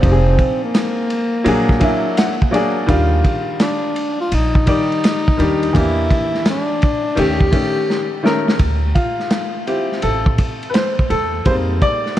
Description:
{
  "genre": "hip hop, jazz-hop",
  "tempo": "84 BPM",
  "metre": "4/4",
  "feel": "swing 66% on 16ths",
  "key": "D phrygian",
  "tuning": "A4 = 440 Hz",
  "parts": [
    { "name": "breathy tenor saxophone", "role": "melody", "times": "0.0-8.3 s", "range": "Bb3 to G4", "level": "-21 LUFS", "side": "left 1 dB", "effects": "ping-pong delay" },
    { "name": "warm upright piano", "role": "accompaniment", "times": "0.0-12.2 s", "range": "Eb3 to Ab5", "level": "-19 LUFS", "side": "left 1 dB", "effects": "none" },
    { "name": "upright bass", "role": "bass", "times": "0.0-11.8 s", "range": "F1 to F2", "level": "-18 LUFS", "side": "equal", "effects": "none" },
    { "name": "vintage drum kit", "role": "drums", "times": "0.0-12.2 s", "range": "hi-hat, kick drum, ride cymbal, snare drum", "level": "-18 LUFS", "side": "equal", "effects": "none" }
  ],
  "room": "moderate church reverb, RT60 3.5 s",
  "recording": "dreamy mix soaked in reverb",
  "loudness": "-14 LUFS",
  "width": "side -12 dB against mid",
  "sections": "0.0-8.6 A section; 8.6-12.2 B section",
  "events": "upright piano fill 1.5-2.9; drum fill 7.9-8.6; upright piano solo 8.6-12.2",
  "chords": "0.0 Fm7; 1.5 Bbaug7; 2.9 Ebmaj9; 5.7 Em7b5; 7.2 Eb7#11; 8.6 Dm9 (rootless); 11.5 Fm11",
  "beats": "| 0.04 0.75 1.46 2.18 | 2.89 3.61 4.32 5.04 | 5.75 6.46 7.18 7.89 | 8.61 9.32 10.04 10.75 | 11.46 12.18"
}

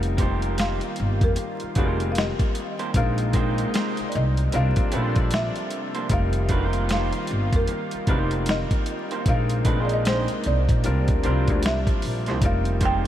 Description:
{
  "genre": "R&B, neo-soul",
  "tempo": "76 BPM",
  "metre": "4/4",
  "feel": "swing 61% on 16ths",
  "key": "F minor",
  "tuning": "A4 = 440 Hz",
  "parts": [
    { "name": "folk marimba with medium mallets", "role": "melody", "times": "0.0-13.1 s", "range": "Bb4 to G5", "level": "-31 LUFS", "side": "equal", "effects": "analog delay" },
    { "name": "clear concert grand piano", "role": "accompaniment", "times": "0.0-13.1 s", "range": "G3 to G5", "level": "-30 LUFS", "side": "left 4 dB", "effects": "wide subtle chorus" },
    { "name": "lush unison pad", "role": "sustained chords", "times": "0.2-13.1 s", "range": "C3 to F4", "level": "-32 LUFS", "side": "right 1 dB", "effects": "chorus" },
    { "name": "upright bass", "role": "bass", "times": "0.0-13.1 s", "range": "F1 to Bb2", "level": "-24 LUFS", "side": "equal", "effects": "none" },
    { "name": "dusty soul sampler-style drum kit", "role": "drums", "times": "0.0-13.0 s", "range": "hi-hat, kick drum, snare drum", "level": "-25 LUFS", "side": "equal", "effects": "none" },
    { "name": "electric guitar through a small old amp", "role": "second line", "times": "0.2-13.1 s", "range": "Bb3 to C5", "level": "-32 LUFS", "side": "right 5 dB", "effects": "none" }
  ],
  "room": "light reverb, studio reverb",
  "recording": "vinyl crackle",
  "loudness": "-21 LUFS",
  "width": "side -12 dB against mid",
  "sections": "0.0-13.1 A section",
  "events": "none",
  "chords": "0.0 F9sus4; 2.9 Bb9sus4; 4.5 C9sus4; 6.1 F9sus4; 9.3 Bb9sus4; 10.8 C9sus4; 12.4 F9sus4",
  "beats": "0.57 1.36 2.15 | 2.94 3.73 4.52 5.31 | 6.10 6.89 7.68 8.47 | 9.26 10.05 10.84 11.63 | 12.42"
}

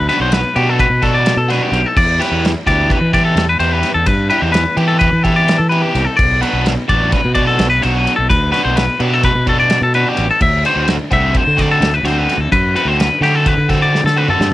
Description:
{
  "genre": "math rock and midwest emo",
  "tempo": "256 BPM (eighths)",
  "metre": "9/8",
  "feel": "straight",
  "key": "unclear",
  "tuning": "A4 = 440 Hz",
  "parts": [
    { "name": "twangy electric guitar", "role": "arpeggios", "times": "0.0-14.5 s", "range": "G4 to E5", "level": "-15 LUFS", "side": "left 2 dB", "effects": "vibrato effect, cassette tape" },
    { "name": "fuzz fingered electric bass", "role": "bass", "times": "0.0-14.5 s", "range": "A1 to E3", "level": "-17 LUFS", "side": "equal", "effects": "overdrive" },
    { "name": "biting overdriven guitar", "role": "riff", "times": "0.1-14.5 s", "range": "D3 to G4", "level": "-19 LUFS", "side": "right 1 dB", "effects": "cassette tape" },
    { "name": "loose indie drum kit", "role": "drums", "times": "0.1-14.5 s", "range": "crash cymbal, kick drum, ride cymbal, snare drum, toms", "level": "-19 LUFS", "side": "equal", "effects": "cassette tape" }
  ],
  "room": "little or no reverb",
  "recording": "home recording on cassette",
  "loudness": "-11 LUFS",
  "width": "side -16 dB against mid",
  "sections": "0.0-14.5 A section",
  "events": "drum fill 13.9-14.5",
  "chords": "0.0 Bm7; 2.0 Em7; 6.2 Bm7; 10.4 D7",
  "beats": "0.08 0.32 0.55 0.79 1.02 1.26 1.49 1.73 | 1.96 2.20 2.43 2.67 2.90 3.14 3.37 3.60 3.84 | 4.08 4.31 4.54 4.78 5.01 5.25 5.48 5.72 5.95 | 6.19 6.42 6.66 6.89 7.12 7.36 7.59 7.83 8.06 | 8.30 8.53 8.77 9.00 9.23 9.47 9.70 9.94 10.17 | 10.41 10.64 10.88 11.11 11.35 11.58 11.81 12.05 12.29 | 12.52 12.75 12.99 13.22 13.46 13.70 13.93 14.16 14.40"
}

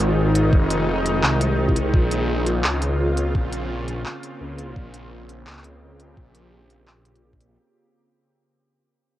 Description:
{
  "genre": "half-time drum and bass",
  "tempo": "170 BPM",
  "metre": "4/4",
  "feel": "swing 58% on 16ths, half-time",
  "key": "unclear",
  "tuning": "A4 = 445 Hz",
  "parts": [
    { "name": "bowed-like drone", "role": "sustained chords", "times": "0.0-7.6 s", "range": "Db3 to G4", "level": "-25 LUFS", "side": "equal", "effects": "built-in reverb, sidechain pumping, cassette tape" },
    { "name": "phased detuned saw bass", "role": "bass", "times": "0.0-7.6 s", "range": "F1 to Db2", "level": "-23 LUFS", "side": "equal", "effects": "phaser" },
    { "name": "organic electronic drum kit", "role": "drums", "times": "0.0-7.5 s", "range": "handclaps, hi-hat", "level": "-26 LUFS", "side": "equal", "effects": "none" },
    { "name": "pulsing gated texture", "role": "texture", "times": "0.0-7.6 s", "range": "F4", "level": "-31 LUFS", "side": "equal", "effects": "chorus, built-in reverb, cassette tape" },
    { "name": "electronic kick drum", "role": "drums", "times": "0.5-7.4 s", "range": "none", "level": "-19 LUFS", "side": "equal", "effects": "none" }
  ],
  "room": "moderate spring reverb, RT60 1.4 s",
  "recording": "home recording on cassette",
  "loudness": "-18 LUFS",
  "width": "side -13 dB against mid",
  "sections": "0.0-7.6 A section",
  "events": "fade-out 0.0-7.6",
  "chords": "0.0 Fm7; 1.9 Bbmadd9",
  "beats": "0.17 | 0.53 0.88 1.23 1.58 | 1.94 2.29 2.64 3.00 | 3.35 3.70 4.05 4.41 | 4.76 5.11 5.47 5.82 | 6.17 6.53 6.88 7.23"
}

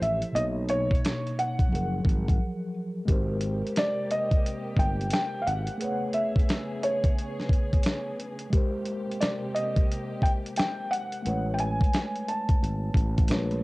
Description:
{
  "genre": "lo-fi hip hop",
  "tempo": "88 BPM",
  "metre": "4/4",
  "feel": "swing 63% on 16ths",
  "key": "unclear",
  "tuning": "A4 = 440 Hz",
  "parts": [
    { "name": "felt-muted upright piano", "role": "melody", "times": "0.0-13.6 s", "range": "C#5 to A5", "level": "-30 LUFS", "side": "equal", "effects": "low-pass filter" },
    { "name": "mellow tine electric piano", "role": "accompaniment", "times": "0.0-13.6 s", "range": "B2 to C#5", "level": "-33 LUFS", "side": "equal", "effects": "medium stereo tremolo, cassette tape, low-pass filter" },
    { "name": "sustaining fretless electric bass", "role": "bass", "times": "0.0-5.7, 11.3-13.6 s", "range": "F#1 to B1", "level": "-30 LUFS", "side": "equal", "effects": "tube saturation" },
    { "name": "dusty soul sampler-style drum kit", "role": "drums", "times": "0.0-13.6 s", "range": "hi-hat, kick drum, snare drum", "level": "-25 LUFS", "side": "equal", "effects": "cassette tape" },
    { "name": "warm studio string section", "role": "sustained chords", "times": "3.1-11.2 s", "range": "B#2 to G#4", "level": "-40 LUFS", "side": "equal", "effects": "low-pass filter, cassette tape" }
  ],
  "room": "light reverb",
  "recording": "home recording on cassette",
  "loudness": "-24 LUFS",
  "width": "side -22 dB against mid",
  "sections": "0.0-3.1 A section; 3.1-13.6 B section",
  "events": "break 0.0-3.1",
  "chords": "0.3 Bmaj9; 1.7 F#maj9; 3.1 G#maj9; 5.8 Amaj9; 8.5 G#maj9; 11.3 Amaj9",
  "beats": "| 0.35 1.03 1.71 2.39 | 3.08 3.76 4.44 5.12 | 5.80 6.49 7.17 7.85 | 8.53 9.21 9.89 10.58 | 11.26 11.94 12.62 13.30"
}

